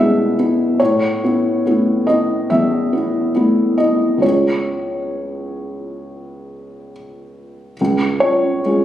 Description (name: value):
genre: neoclassical minimalist piano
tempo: 67-72 BPM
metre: 4/4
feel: rubato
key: unclear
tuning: A4 = 439 Hz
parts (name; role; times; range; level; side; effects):
- felt-muted upright piano; solo; 0.0-8.8 s; Db2 to Gb5; -15 LUFS; equal; none
room: moderate recital hall reverb, RT60 1.9 s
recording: recorded on a phone in the room, studio reverb, compression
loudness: -14 LUFS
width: side -11 dB against mid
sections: 0.0-7.8 A section; 7.8-8.8 A section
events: none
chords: 0.0 E; 0.8 Aadd9; 4.2 Db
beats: | 0.80 1.65 2.50 3.35 | 4.23 5.12 6.02 6.91 | 7.79 8.65